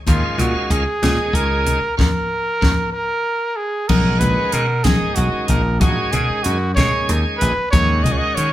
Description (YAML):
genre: electric jazz fusion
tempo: 63 BPM (dotted quarters)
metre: 6/8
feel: straight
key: unclear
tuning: A4 = 440 Hz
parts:
  - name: breathy trumpet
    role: melody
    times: 0.1-8.5 s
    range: F4 to Eb5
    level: -21 LUFS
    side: right 1 dB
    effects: none
  - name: overdriven tonewheel organ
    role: accompaniment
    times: 0.1-8.5 s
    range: Eb3 to F5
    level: -24 LUFS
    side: equal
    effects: slow rotary speaker
  - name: slap bass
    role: bass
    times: 0.1-8.5 s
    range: A#1 to Eb3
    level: -20 LUFS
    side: equal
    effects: none
  - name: crisp fusion drum kit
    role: drums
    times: 0.1-8.5 s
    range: crash cymbal, hi-hat, kick drum, snare drum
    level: -20 LUFS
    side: equal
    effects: none
  - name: congas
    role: percussion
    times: 0.1-8.2 s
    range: none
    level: -23 LUFS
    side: left 2 dB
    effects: none
room: moderate large studio reverb, RT60 0.9 s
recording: band playing live in one room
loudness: -15 LUFS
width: side -13 dB against mid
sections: 0.0-3.9 A section; 3.9-8.5 B section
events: band accent 2.0-3.9; drum fill 2.9-3.9; tonewheel organ fill 2.9-3.9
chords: 0.1 Gbmaj7 (rootless); 3.9 Bmaj9; 7.7 Ebm11